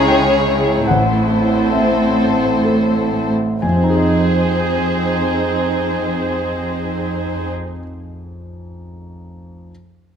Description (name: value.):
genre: cinematic, emotional film score for orchestra.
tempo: 59-78 BPM.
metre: 3/4.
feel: rubato.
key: F minor.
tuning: A4 = 439 Hz.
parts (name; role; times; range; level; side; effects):
muted studio violin section; second line; 0.0-7.5 s; Ab4 to Db5; -20 LUFS; left 2 dB; none.
muted chamber viola section; accompaniment; 0.0-7.5 s; Ab3 to Fb4; -22 LUFS; right 2 dB; none.
warm grand piano; accompaniment; 0.0-9.7 s; A1 to Bb5; -20 LUFS; left 1 dB; none.
muted studio cello section; bass; 0.0-7.5 s; F2 to Db3; -21 LUFS; right 3 dB; none.
room: moderate scoring stage reverb, RT60 1.6 s.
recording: close, detailed microphones.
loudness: -14 LUFS.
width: side -7 dB against mid.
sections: 0.0-3.6 A section; 3.6-9.7 B section.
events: slowing down 0.0-3.6.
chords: 0.0 Dbm; 0.9 Am; 3.6 Fm7.